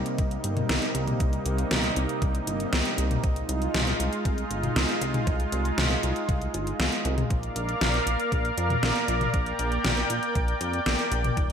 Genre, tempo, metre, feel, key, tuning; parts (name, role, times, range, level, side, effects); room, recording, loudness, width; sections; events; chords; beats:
synthwave; 118 BPM; 4/4; straight; A4 = 442 Hz
lush unison pad; sustained chords; 0.0-11.5 s; C3 to G5; -28 LUFS; right 1 dB; chorus, sidechain pumping
chorused synth bass; bass; 0.0-11.5 s; Eb1 to F2; -29 LUFS; equal; tube saturation, sidechain pumping
pop drum kit; drums; 0.1-11.5 s; hi-hat, snare drum, toms; -28 LUFS; left 1 dB; overdrive, gated reverb
electronic kick drum; drums; 0.2-11.5 s; -27 LUFS; equal
moderate plate reverb, RT60 1.8 s; bright 1980s-style digital production; -24 LUFS; side -8 dB against mid
0.0-11.5 A section
0.0 Cm7; 3.2 Fm7; 7.3 Bb
0.19 0.69 | 1.20 1.71 2.22 2.73 | 3.24 3.75 4.25 4.76 | 5.27 5.78 6.29 6.80 | 7.30 7.81 8.32 8.83 | 9.34 9.85 10.36 10.86 | 11.37